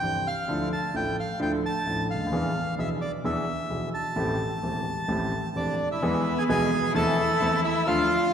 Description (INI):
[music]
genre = tango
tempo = 130 BPM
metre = 4/4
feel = rubato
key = A minor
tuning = A4 = 439 Hz
[part]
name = bandoneon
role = melody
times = 0.0-8.3 s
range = D4 to A5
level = -27 LUFS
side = right 1 dB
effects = none
[part]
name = warm grand piano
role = accompaniment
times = 0.0-8.1 s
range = E1 to A4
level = -27 LUFS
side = equal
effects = none
[part]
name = rich cello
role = second line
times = 6.0-8.3 s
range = B3 to E4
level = -28 LUFS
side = left 3 dB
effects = none
[sound]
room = wet concert hall reverb, RT60 2.5 s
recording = recorded in a church or concert hall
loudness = -24 LUFS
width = side -8 dB against mid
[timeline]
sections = 0.0-6.0 A section; 6.0-8.3 B section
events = none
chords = 0.5 Dmadd9; 2.3 E7; 4.2 Am7; 6.0 E; 6.9 Am/E